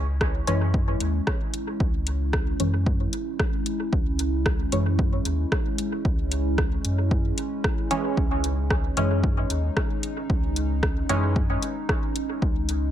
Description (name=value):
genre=dub techno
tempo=113 BPM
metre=4/4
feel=swing 54% on 16ths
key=C# minor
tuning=A4 = 440 Hz
part: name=dark analog pad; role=sustained chords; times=0.2-12.9 s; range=G#3 to E4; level=-31 LUFS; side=right 1 dB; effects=chorus, phaser, sidechain pumping
part: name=pure sine sub bass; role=bass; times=0.0-12.9 s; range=C#2 to F#2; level=-26 LUFS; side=equal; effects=sidechain pumping
part: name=deep house drum kit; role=drums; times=0.2-12.8 s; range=hi-hat, rim click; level=-30 LUFS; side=equal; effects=overdrive, dub echo
part: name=electronic kick drum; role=drums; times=0.2-12.5 s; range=none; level=-26 LUFS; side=equal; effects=overdrive
part: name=filtered dub chord stab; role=stabs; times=0.5-11.4 s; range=E3 to C#4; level=-29 LUFS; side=equal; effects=chorus, phaser, sidechain pumping, dub echo
room=light reverb, digital ambience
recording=echo-heavy mix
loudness=-22 LUFS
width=side -11 dB against mid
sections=0.0-12.9 A section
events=none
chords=0.0 C#m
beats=0.21 0.74 1.27 | 1.80 2.33 2.86 3.40 | 3.93 4.46 4.99 5.52 | 6.05 6.58 7.11 7.64 | 8.17 8.71 9.24 9.77 | 10.30 10.83 11.36 11.89 | 12.42